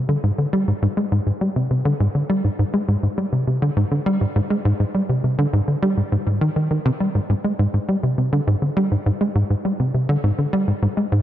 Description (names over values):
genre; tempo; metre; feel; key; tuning
ambient; 102 BPM; 4/4; straight; Ab lydian; A4 = 440 Hz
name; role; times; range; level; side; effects
tight sequencer bass; solo; 0.0-11.2 s; Ab2 to Ab3; -18 LUFS; equal; analog chorus, analog delay
room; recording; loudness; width
moderate plate reverb, RT60 3.2 s; dark, warm production; -18 LUFS; side -12 dB against mid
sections
0.0-7.1 A section; 7.1-11.2 B section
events
none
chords
none